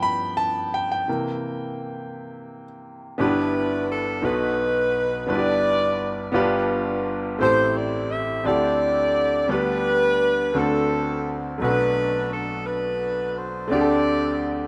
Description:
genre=gospel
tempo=57 BPM (dotted quarters)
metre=6/8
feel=straight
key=G major from 3.2 s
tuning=A4 = 438 Hz
part: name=clear grand piano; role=accompaniment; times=0.0-14.7 s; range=G1 to B5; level=-26 LUFS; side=equal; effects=none
part: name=mellow saxophone section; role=melody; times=3.2-14.7 s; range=C4 to E5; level=-25 LUFS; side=equal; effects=none
room=light reverb, small room ambience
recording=rough home demo mix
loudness=-23 LUFS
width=mono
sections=0.0-3.2 A section; 3.2-14.7 B section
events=grand piano solo 0.0-3.2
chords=0.0 G7; 1.1 C7; 3.2 G6; 4.2 B7; 5.3 Em7/G; 6.3 G7; 7.4 Am7; 8.4 D9sus4; 9.5 G/D; 10.6 D7; 11.6 Bm7; 13.7 D7sus4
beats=0.02 | 1.07 2.13 | 3.19 4.24 | 5.29 6.34 | 7.40 8.45 | 9.50 10.55 | 11.60 12.65 | 13.70

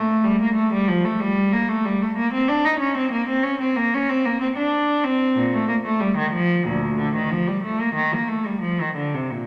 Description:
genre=classical, baroque-style suite movement for unaccompanied cello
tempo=93 BPM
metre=4/4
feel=rubato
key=Bb major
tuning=A4 = 440 Hz
part: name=rich cello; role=solo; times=0.0-9.5 s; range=D2 to Eb4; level=-21 LUFS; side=equal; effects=none
room=wet recital hall reverb, RT60 1.7 s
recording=none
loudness=-21 LUFS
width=mono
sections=0.0-9.5 A section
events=none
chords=none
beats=0.25 0.89 | 1.53 2.17 2.81 3.45 | 4.09 4.73 5.36 6.00 | 6.65 7.30 7.95 8.62 | 9.31

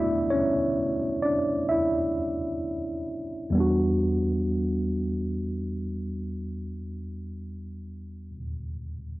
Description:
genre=R&B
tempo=65 BPM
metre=4/4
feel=swing 58% on 16ths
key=E dorian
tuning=A4 = 440 Hz
part: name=mellow tine electric piano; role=accompaniment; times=0.0-9.2 s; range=E2 to E5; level=-26 LUFS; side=equal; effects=medium stereo tremolo, cassette tape
room=light reverb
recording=home recording on cassette, low-pass filter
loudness=-25 LUFS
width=side -18 dB against mid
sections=0.0-3.5 A section; 3.5-7.2 B section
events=tine electric piano solo 0.0-3.5; filter sweep 0.0-3.5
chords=0.0 G69 (rootless); 3.5 Em9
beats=0.77 1.69 2.62 | 3.54 4.46 5.39 6.31

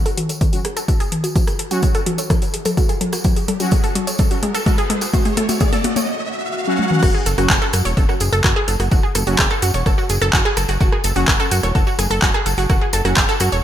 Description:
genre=melodic techno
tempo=127 BPM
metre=4/4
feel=straight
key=F# minor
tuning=A4 = 440 Hz
part: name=riser and swell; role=sound effects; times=0.0-7.0 s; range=none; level=-29 LUFS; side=right 1 dB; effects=none
part: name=wide unison pluck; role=arpeggios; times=0.1-13.6 s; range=F#4 to C#6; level=-22 LUFS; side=right 1 dB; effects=sidechain pumping, digital delay
part: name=techno drum kit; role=drums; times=0.1-13.6 s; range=crash cymbal, handclaps, hi-hat, rim click, toms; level=-21 LUFS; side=left 1 dB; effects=overdrive, small room ambience, gated reverb
part: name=tambourine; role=percussion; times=0.1-13.6 s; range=none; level=-29 LUFS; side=right 1 dB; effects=none
part: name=electronic kick drum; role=drums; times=0.4-13.3 s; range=none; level=-18 LUFS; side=equal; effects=small room ambience
part: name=analog synth brass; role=stabs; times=0.5-13.2 s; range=F#3 to F#4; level=-25 LUFS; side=left 1 dB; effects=chorus, sidechain pumping, digital delay
part: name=fat analog bass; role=bass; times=7.0-13.6 s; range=E1 to F#2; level=-20 LUFS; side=equal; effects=sidechain pumping
room=light reverb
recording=bright 1980s-style digital production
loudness=-15 LUFS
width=side -11 dB against mid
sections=0.0-7.0 A section; 7.0-13.6 B section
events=build-up 0.0-7.0; drum fill 0.0-6.1, 6.8; riser 0.0-7.0; filter sweep on synth arpeggio sound 0.0-7.0; break 6.1-7.0; swell 6.1-7.0; drop 7.0-13.6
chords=0.0 F#m; 7.0 F#madd9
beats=0.41 0.88 | 1.36 1.83 2.30 2.77 | 3.25 3.72 4.19 4.66 | 5.14 5.61 6.08 6.55 | 7.03 7.50 7.97 8.44 | 8.91 9.39 9.86 10.33 | 10.80 11.28 11.75 12.22 | 12.70 13.17

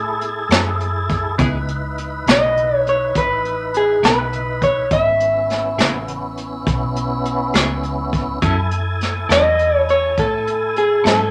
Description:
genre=slow blues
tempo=68 BPM (dotted quarters)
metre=12/8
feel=straight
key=C# minor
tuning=A4 = 440 Hz
part: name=tonewheel organ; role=sustained chords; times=0.0-11.3 s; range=B3 to G#5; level=-27 LUFS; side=equal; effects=chorus vibrato, slow rotary speaker
part: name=vintage muted fingered electric bass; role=bass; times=0.0-11.3 s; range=G#1 to A2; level=-27 LUFS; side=equal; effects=none
part: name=vintage brush drum kit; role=drums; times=0.2-11.2 s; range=hi-hat, kick drum, snare drum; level=-22 LUFS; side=equal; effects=none
part: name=clean electric guitar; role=accompaniment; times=0.5-11.2 s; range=C#3 to A4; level=-25 LUFS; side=equal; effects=tremolo
part: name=electric guitar through a small old amp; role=melody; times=2.3-11.3 s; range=G#4 to E5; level=-18 LUFS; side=equal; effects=none
room=moderate club reverb, RT60 0.7 s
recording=none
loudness=-18 LUFS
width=mono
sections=0.0-11.3 A section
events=none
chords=0.0 F#m7; 1.4 C#m7; 8.4 F#m7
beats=0.51 | 1.39 2.27 3.15 4.03 | 4.91 5.78 6.66 7.54 | 8.42 9.29 10.17 11.05

